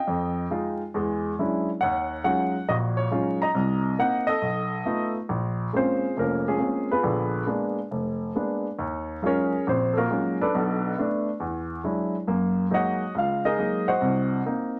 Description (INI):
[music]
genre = solo jazz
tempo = 138 BPM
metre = 4/4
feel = swing 66% on 8ths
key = Bb minor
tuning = A4 = 441 Hz
[part]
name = warm baby grand piano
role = solo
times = 0.0-14.8 s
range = F1 to Bb5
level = -26 LUFS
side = equal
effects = none
[sound]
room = wet studio reverb, RT60 0.5 s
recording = vinyl crackle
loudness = -26 LUFS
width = mono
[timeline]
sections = 0.0-5.3 A section; 5.3-14.8 B section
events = grand piano solo 5.3-14.8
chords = 0.1 Fm9; 0.9 E13; 1.8 Ebm11; 3.5 Cm7b5; 4.4 B7#11; 5.3 Bbm9; 7.0 Bb7b9; 8.8 Ebm11; 10.5 Bm7; 11.4 E9; 12.3 Gb69; 14.0 Cm7b5